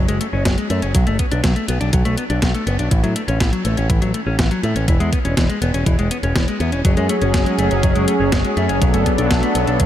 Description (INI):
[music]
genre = italo disco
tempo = 122 BPM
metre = 4/4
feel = straight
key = F# minor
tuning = A4 = 440 Hz
[part]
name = clean electric guitar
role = arpeggios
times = 0.0-9.9 s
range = E3 to D4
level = -22 LUFS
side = left 3 dB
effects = low-pass filter, tape echo
[part]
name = picked electric bass with an envelope filter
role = bass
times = 0.0-9.9 s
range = E1 to A2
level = -20 LUFS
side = equal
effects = tape echo
[part]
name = clean 12-bit digital drum machine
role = drums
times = 0.1-9.9 s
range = hi-hat, snare drum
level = -25 LUFS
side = equal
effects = overdrive
[part]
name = electronic kick drum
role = drums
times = 0.5-9.9 s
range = none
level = -18 LUFS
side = equal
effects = overdrive
[part]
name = lush unison pad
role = sustained chords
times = 6.8-9.9 s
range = F#3 to A4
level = -20 LUFS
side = equal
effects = chorus
[sound]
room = light reverb, digital ambience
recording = none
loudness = -15 LUFS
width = side -11 dB against mid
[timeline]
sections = 0.0-9.9 A section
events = none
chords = 0.0 F#madd9; 0.9 Bm7; 2.9 A6; 4.9 E6; 6.8 F#madd9; 8.8 Bm7